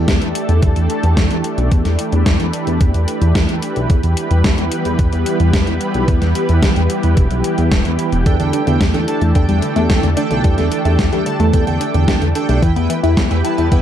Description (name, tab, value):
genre	synthwave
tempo	110 BPM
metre	4/4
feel	straight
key	unclear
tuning	A4 = 441 Hz
part	analog string pad	sustained chords	0.0-13.8 s	E3 to B4	-20 LUFS	right 1 dB	ensemble chorus, sidechain pumping
part	chorused synth bass	bass	0.0-13.8 s	E1 to E2	-16 LUFS	equal	sidechain pumping
part	electronic kick drum	drums	0.1-13.8 s	none	-16 LUFS	equal	overdrive
part	gated 80s digital drum machine	drums	0.1-13.8 s	hi-hat, snare drum	-21 LUFS	left 1 dB	gated reverb, gated reverb snare, overdrive
part	chorused polysynth	stabs	8.3-13.8 s	D4 to A5	-21 LUFS	right 3 dB	cassette tape, digital delay
part	analog pluck	arpeggios	8.4-13.8 s	D3 to G4	-20 LUFS	left 1 dB	chorus, phaser, digital delay
room	light reverb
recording	dark, warm production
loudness	-13 LUFS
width	side -10 dB against mid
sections	0.0-13.8 A section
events	none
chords	0.0 A7sus4; 3.9 Em; 8.3 A7sus4; 12.6 Em